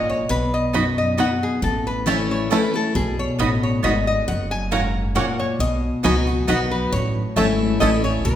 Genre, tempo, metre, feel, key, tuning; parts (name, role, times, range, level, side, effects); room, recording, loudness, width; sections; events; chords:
bluegrass; 136 BPM; 3/4; straight; B mixolydian; A4 = 439 Hz
lap resonator guitar; melody; 0.0-8.4 s; G#4 to A#5; -25 LUFS; left 2 dB
picked steel-string acoustic guitar; accompaniment; 0.0-8.4 s; F#2 to F#4; -22 LUFS; left 2 dB
upright bass; bass; 0.0-8.4 s; F#1 to C#2; -25 LUFS; right 1 dB
bluegrass banjo; melody; 0.7-7.9 s; B3 to A4; -28 LUFS; right 5 dB
mandolin; stabs; 0.7-7.9 s; A3 to B5; -27 LUFS; right 6 dB
wet recital hall reverb, RT60 1.4 s; recorded in a church or concert hall; -18 LUFS; side -10 dB against mid
0.0-8.4 A section
0.3 B; 1.6 A; 2.9 B; 4.3 F#; 5.6 B; 6.9 A